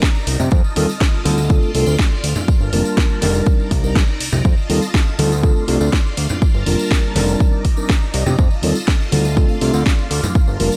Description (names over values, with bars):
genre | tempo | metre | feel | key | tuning
filtered disco house | 122 BPM | 4/4 | straight | unclear | A4 = 439 Hz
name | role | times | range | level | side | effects
mellow tine electric piano | accompaniment | 0.0-10.8 s | G3 to Bb4 | -24 LUFS | equal | phaser, vintage 12-bit sampler grit, sidechain pumping
phased string machine | sustained chords | 0.0-10.8 s | Eb4 to C6 | -31 LUFS | equal | ensemble chorus, phaser, sidechain pumping
electronic kick drum | drums | 0.0-10.5 s | none | -18 LUFS | equal | overdrive, small room ambience
house drum kit | drums | 0.0-10.7 s | hi-hat, snare drum | -26 LUFS | equal | overdrive, small room ambience, sidechain pumping on hats
tambourine and congas | percussion | 0.0-10.8 s | none | -29 LUFS | equal | sidechain pumping on perc
fat analog bass | bass | 0.3-10.7 s | F1 to C3 | -21 LUFS | equal | sidechain pumping
room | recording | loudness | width
little or no reverb | dark, warm production | -17 LUFS | mono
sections
0.0-10.8 A section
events
none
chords
0.0 Cm9; 0.5 F7; 1.5 Dm7; 2.5 Gm9; 3.5 Cm9; 4.5 F7; 5.4 Dm7; 6.4 Gm9; 7.4 Cm9; 8.4 F7; 9.4 Dm7